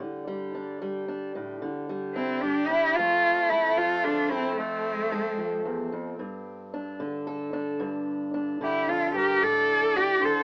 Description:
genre	acoustic folk duo or small band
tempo	112 BPM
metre	3/4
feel	straight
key	unclear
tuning	A4 = 437 Hz
part	fingerpicked steel-string acoustic guitar	accompaniment	0.0-10.4 s	E2 to A4	-34 LUFS	equal	none
part	rich cello	melody	2.1-5.6, 8.6-10.4 s	A3 to A4	-26 LUFS	equal	cassette tape
part	warm harmonica	second line	2.2-5.6, 8.6-10.4 s	C4 to D5	-36 LUFS	equal	analog delay
room	wet booth ambience, RT60 0.2 s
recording	home recording on cassette, AM radio sound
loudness	-27 LUFS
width	mono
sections	0.0-3.0 A section; 3.0-10.4 B section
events	none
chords	0.0 A7sus4 (rootless); 3.0 F; 6.2 Gsus2; 9.4 D5/A

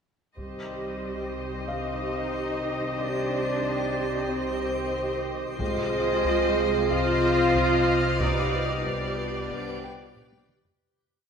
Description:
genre	cinematic, suspense film score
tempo	92 BPM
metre	4/4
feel	straight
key	C harmonic minor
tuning	A4 = 439 Hz
part	muted chamber violin section	melody	0.4-10.6 s	D5 to Eb5	-34 LUFS	left 2 dB	none
part	dark clarinet	second line	0.4-10.5 s	G4 to F5	-31 LUFS	right 1 dB	none
part	muted chamber violin section	second line	0.4-10.6 s	B4 to C5	-33 LUFS	equal	none
part	muted chamber viola section	accompaniment	0.4-10.6 s	F4 to G4	-33 LUFS	right 4 dB	none
part	backwards swelling texture	sustained chords	1.1-10.8 s	F4 to D6	-36 LUFS	equal	built-in reverb
part	warm French horn section	sustained chords	0.4-10.5 s	Eb3 to C4	-35 LUFS	left 5 dB	none
part	muted chamber double bass section	bass	0.4-10.6 s	C2	-33 LUFS	equal	none
part	muted symphonic cello section	bass	0.4-10.5 s	G3 to F4	-32 LUFS	equal	none
part	taiko ensemble	drums	0.4-1.6, 5.6-11.0 s	none	-37 LUFS	left 1 dB	none
part	felt-muted upright piano	texture	1.7-5.6, 9.8-10.8 s	F5 to G5	-44 LUFS	left 3 dB	none
part	muted chamber violin section	texture	5.6-10.5 s	D6 to C7	-38 LUFS	right 2 dB	none
room	wet concert hall reverb, RT60 2.3 s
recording	minimal, uncompressed stereo recording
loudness	-24 LUFS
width	side -6 dB against mid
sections	0.4-10.8 A section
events	fade-out 8.2-10.8; drum fill 10.2-10.8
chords	0.4 Cm; 5.6 Fm7/C; 8.2 G/C

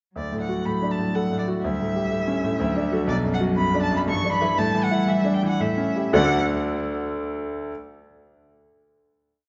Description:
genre	quick classical-period movement for piano trio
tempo	112-125 BPM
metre	3/4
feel	straight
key	D major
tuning	A4 = 440 Hz
part	rich violin	melody	0.2-6.4 s	D5 to C#6	-29 LUFS	equal	none
part	warm cello	second line	0.2-6.4 s	E3 to A3	-29 LUFS	equal	none
part	bright concert grand piano	accompaniment	0.2-7.7 s	B1 to F#5	-26 LUFS	equal	none
room	wet concert hall reverb, RT60 2.3 s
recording	nothing above 7.7 kHz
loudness	-23 LUFS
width	mono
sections	0.2-6.1 A section; 6.1-7.7 final chord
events	slowing down 2.4-6.1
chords	0.2 D; 1.6 A7/D; 2.6 D; 3.1 Bm; 4.1 Em7/G; 4.6 A7sus4; 5.6 A7; 6.1 D

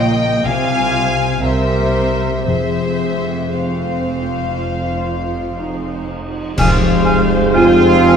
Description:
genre	classical, slow romantic movement for symphony orchestra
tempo	53-65 BPM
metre	4/4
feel	rubato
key	F minor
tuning	A4 = 436 Hz
part	dark studio violin section	melody	0.0-8.2 s	E5 to Ab5	-24 LUFS	left 4 dB	none
part	warm chamber violin section	second line	0.0-6.1 s	C5 to F5	-23 LUFS	left 2 dB	none
part	dark symphonic viola section	accompaniment	0.0-8.2 s	Ab3 to C5	-22 LUFS	right 2 dB	none
part	concert harp	arpeggios	0.0-8.2 s	C3 to F5	-23 LUFS	left 10 dB	none
part	dark symphonic double bass section	bass	0.0-8.2 s	F1 to F2	-23 LUFS	right 4 dB	none
part	warm symphonic cello section	bass	0.0-8.2 s	F2 to F4	-19 LUFS	right 2 dB	none
part	cymbal swell, clash cymbals and concert bass drum	percussion	2.5-8.2 s	none	-22 LUFS	equal	none
part	silver concert flute	second line	6.6-8.2 s	Ab5	-23 LUFS	left 2 dB	none
part	warm oboe	second line	6.6-8.2 s	F5	-22 LUFS	right 2 dB	none
part	warm tuba	bass	6.6-8.2 s	F1	-18 LUFS	right 5 dB	none
part	mellow clarinet	second line	7.5-8.2 s	C4	-18 LUFS	left 1 dB	none
part	dark French horn section	sustained chords	7.6-8.2 s	F3	-19 LUFS	left 5 dB	none
room	moderate scoring stage reverb, RT60 1.6 s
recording	dark, warm production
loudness	-14 LUFS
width	side -7 dB against mid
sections	0.0-6.6 A section; 6.6-8.2 A section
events	band accent 6.6-7.5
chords	0.4 Fm/C; 1.4 C7; 2.5 Fm

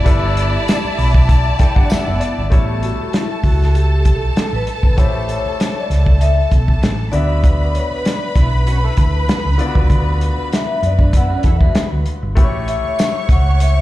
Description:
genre	lush 1970s-style soul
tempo	97 BPM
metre	4/4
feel	swing 54% on 16ths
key	unclear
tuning	A4 = 440 Hz
part	vibraphone with soft mallets	melody	0.0-13.8 s	E4 to F#5	-24 LUFS	left 2 dB	slapback echo
part	warm studio violin section	second line	0.0-13.8 s	E4 to C#6	-24 LUFS	equal	slapback echo
part	clear baby grand piano	accompaniment	0.0-13.8 s	D3 to B5	-26 LUFS	left 3 dB	slapback echo
part	electric guitar at the edge of break-up	riff	0.0-3.0, 8.4-12.3 s	A3 to B4	-29 LUFS	right 2 dB	analog chorus, slapback echo
part	hollow-body short-scale fingered electric bass	bass	0.0-13.8 s	F#1 to F#2	-16 LUFS	equal	none
part	warm soul drum kit	drums	0.1-13.8 s	hi-hat, kick drum, snare drum	-15 LUFS	equal	none
part	tambourine	percussion	0.7-2.1, 13.0-13.1 s	none	-37 LUFS	right 3 dB	none
room	little or no reverb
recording	live gig heard through the venue's PA, club reverb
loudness	-13 LUFS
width	side -16 dB against mid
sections	0.0-2.5 A section; 2.5-13.8 B section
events	grand piano fill 0.7-2.5; vibraphone solo 2.5-13.8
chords	0.0 G69; 2.5 A7; 7.1 D69; 12.4 A7

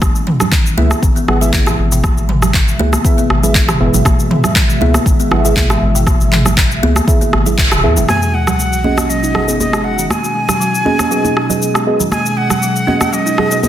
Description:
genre	afro house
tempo	119 BPM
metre	4/4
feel	straight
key	G# minor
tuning	A4 = 444 Hz
part	warm analog pad	sustained chords	0.0-13.7 s	B2 to E5	-23 LUFS	right 1 dB	chorus, sidechain pumping
part	kalimba	arpeggios	0.0-13.6 s	B2 to D#4	-20 LUFS	left 1 dB	sidechain pumping, low-pass filter, tape echo
part	round analog bass	bass	0.0-8.1 s	D#1 to D#2	-16 LUFS	equal	sidechain pumping
part	deep house drum kit	drums	0.0-13.7 s	handclaps, rim click, shaker, toms	-17 LUFS	equal	soft clipping on snare
part	electronic kick drum	drums	0.0-7.7 s	none	-14 LUFS	equal	none
part	congas	percussion	0.0-13.7 s	none	-22 LUFS	right 3 dB	none
part	deep mellow chord stab	stabs	0.8-13.7 s	B3 to F#5	-20 LUFS	right 2 dB	chorus, sidechain pumping, tape echo
part	breathy bright jazz flute	melody	8.1-13.7 s	D#5 to G#5	-18 LUFS	equal	tape echo
part	sub drop	sound effects	8.1-10.1 s	none	-20 LUFS	equal	none
room	light reverb, digital ambience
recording	dense, heavily limited modern master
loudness	-11 LUFS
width	side -11 dB against mid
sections	0.0-8.1 A section; 8.1-13.7 B section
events	band accent 7.6; impact 8.1-10.1; filter sweep on kalimba 8.1-13.7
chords	0.0 E; 8.1 G#m7

